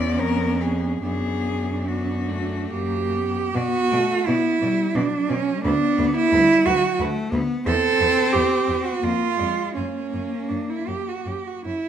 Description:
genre	classical, lyrical piece for cello ensemble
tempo	69-91 BPM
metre	3/4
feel	rubato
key	B minor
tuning	A4 = 438 Hz
part	rich cello	melody	0.0-11.7 s	F#4 to D5	-33 LUFS	left 7 dB	none
part	rich cello	second line	0.0-11.9 s	C#4 to A4	-22 LUFS	right 4 dB	none
part	rich cello	accompaniment	0.0-11.6 s	F#3 to C4	-26 LUFS	left 4 dB	none
part	rich cello	bass	0.0-11.7 s	D2 to B2	-28 LUFS	equal	none
room	moderate recital hall reverb, RT60 1.3 s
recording	lossy compression artefacts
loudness	-20 LUFS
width	side -9 dB against mid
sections	0.0-3.5 A section; 3.5-11.9 B section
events	none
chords	0.2 C#7/E#; 1.0 Bm/F#; 2.7 F#; 3.5 Bm; 5.6 Bm/D; 7.7 C/E; 9.0 A#7/E#; 9.7 F#

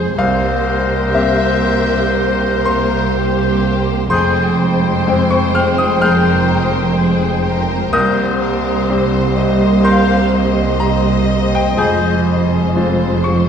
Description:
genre	cinematic, emotional film score for orchestra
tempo	62 BPM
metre	4/4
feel	rubato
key	F minor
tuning	A4 = 441 Hz
part	warm symphonic violin section	melody	0.0-13.5 s	C5	-22 LUFS	left 4 dB	none
part	clear clarinet	second line	0.0-12.1 s	Ab4 to C5	-24 LUFS	left 2 dB	none
part	concert flute	second line	0.0-12.2 s	G6	-23 LUFS	left 2 dB	none
part	dark symphonic violin section	second line	0.0-13.5 s	G4 to F5	-24 LUFS	left 3 dB	none
part	bright baby grand piano	accompaniment	0.0-13.5 s	C2 to F6	-20 LUFS	left 3 dB	none
part	warm symphonic viola section	accompaniment	0.0-13.5 s	Ab3 to G5	-21 LUFS	right 2 dB	none
part	warm symphonic cello section	bass	0.0-13.5 s	C2 to F2	-20 LUFS	right 2 dB	none
part	warm symphonic double bass section	bass	0.0-13.5 s	F1 to C2	-19 LUFS	right 3 dB	none
room	wet scoring stage reverb, RT60 1.7 s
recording	dark, warm production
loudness	-12 LUFS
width	side -7 dB against mid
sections	0.0-13.5 A section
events	none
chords	0.2 C7; 4.1 Fmadd9; 7.9 Cm7; 11.8 Fmadd9

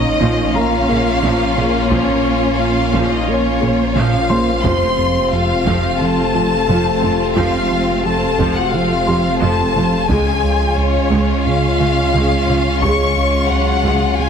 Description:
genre	cinematic, hybrid orchestral and electronic film score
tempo	88 BPM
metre	4/4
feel	straight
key	Bb minor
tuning	A4 = 440 Hz
part	warm symphonic violin section	melody	0.0-14.3 s	Db5 to Db6	-20 LUFS	left 4 dB	none
part	warm symphonic violin section	second line	0.0-14.3 s	C4 to F4	-22 LUFS	left 3 dB	none
part	warm symphonic viola section	accompaniment	0.0-14.2 s	C3 to Bb3	-24 LUFS	equal	none
part	clear trombone section	sustained chords	0.0-14.3 s	Bb2 to Db4	-24 LUFS	right 4 dB	none
part	mellow French horn section	sustained chords	0.0-14.3 s	Gb3 to Db5	-22 LUFS	left 2 dB	none
part	smooth gliding synth bass	riff	0.0-14.3 s	Db2 to Bb3	-21 LUFS	right 2 dB	none
part	warm sub bass	bass	0.0-14.3 s	F1 to Db2	-24 LUFS	equal	none
part	impact	sound effects	0.1-1.9 s	none	barely audible	none	none
part	clear grand piano	texture	0.0-14.3 s	C5 to Db6	-28 LUFS	left 2 dB	none
part	clear symphonic double bass section	bass	0.2-13.9 s	F1 to Db2	-26 LUFS	right 4 dB	none
part	rich symphonic cello section	bass	0.2-13.9 s	Db2 to Bb2	-26 LUFS	right 3 dB	none
part	taiko ensemble	drums	0.2-14.3 s	none	-28 LUFS	equal	none
room	moderate concert hall reverb, RT60 2.5 s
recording	heavily compressed radio sound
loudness	-13 LUFS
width	side -7 dB against mid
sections	0.0-14.3 A section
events	impact 0.0-1.9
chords	0.0 Bbm; 4.6 F; 10.1 Db

